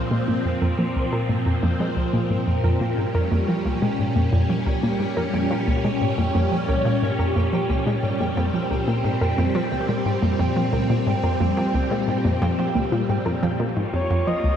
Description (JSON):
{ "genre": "ambient, sequencer-driven space music", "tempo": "89 BPM", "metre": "4/4", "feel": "straight", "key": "Bb dorian", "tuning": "A4 = 439 Hz", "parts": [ { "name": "phased string machine", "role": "sustained chords", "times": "0.0-14.6 s", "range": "Bb2 to Db5", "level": "-24 LUFS", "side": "left 1 dB", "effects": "ensemble chorus, phaser" }, { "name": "analog pluck", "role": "riff", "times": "0.0-14.5 s", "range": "Db2 to F3", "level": "-23 LUFS", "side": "equal", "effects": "chorus, tape echo" }, { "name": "pulsing gated texture", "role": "texture", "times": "0.0-14.6 s", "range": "G5 to Bb5", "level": "-33 LUFS", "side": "right 6 dB", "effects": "chorus, built-in reverb" }, { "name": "warbly dusty pluck", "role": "arpeggios", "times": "0.1-13.5 s", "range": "F3 to Bb4", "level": "-29 LUFS", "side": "equal", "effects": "chorus, auto-pan, tape echo" }, { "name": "fat analog bass", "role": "bass", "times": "13.6-14.6 s", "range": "none", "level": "barely audible", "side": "none", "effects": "none" }, { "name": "breathy flute-like synth lead", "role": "melody", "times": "13.9-14.6 s", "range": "Db5 to Eb5", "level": "-25 LUFS", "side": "left 1 dB", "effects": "chorus" } ], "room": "wet huge ambient reverb, RT60 7.9 s", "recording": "none", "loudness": "-20 LUFS", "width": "side -9 dB against mid", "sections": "0.0-13.6 A section", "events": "fade-in on synth texture 0.0-13.6; filter sweep on synth arpeggio sound 0.0-13.6", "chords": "0.0 Bbm", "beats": "| 0.11 0.79 1.46 2.14 | 2.81 3.48 4.16 4.83 | 5.51 6.18 6.86 7.53 | 8.20 8.88 9.55 10.23 | 10.90 11.57 12.25 12.92 | 13.60 14.27" }